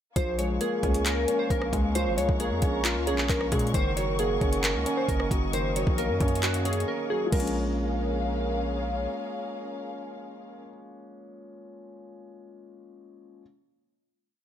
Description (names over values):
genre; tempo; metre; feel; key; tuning
hip hop, trap; 134 BPM; 4/4; half-time; Bb minor; A4 = 444 Hz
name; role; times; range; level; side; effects
glassy digital keys; melody; 0.2-8.6 s; F4 to Db5; -30 LUFS; right 1 dB; chorus, low-pass filter
dark grand piano; accompaniment; 0.2-13.4 s; Eb3 to Db4; -31 LUFS; left 1 dB; low-pass filter
dark symphonic string section; sustained chords; 0.2-10.6 s; Db4 to Db6; -36 LUFS; left 1 dB; none
distorted 808-style bass; bass; 0.2-9.1 s; Gb1 to Bb2; -30 LUFS; equal; distortion
trap drum kit; drums; 0.2-7.5 s; crash cymbal, handclaps, hi-hat, kick drum, rim click; -28 LUFS; equal; none
room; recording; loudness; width
light reverb, digital ambience; none; -24 LUFS; side -10 dB against mid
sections
0.2-7.3 hook; 7.3-10.9 final chord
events
break 6.9-7.3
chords
0.2 Bbm7; 3.7 Gb6; 7.3 Bbm7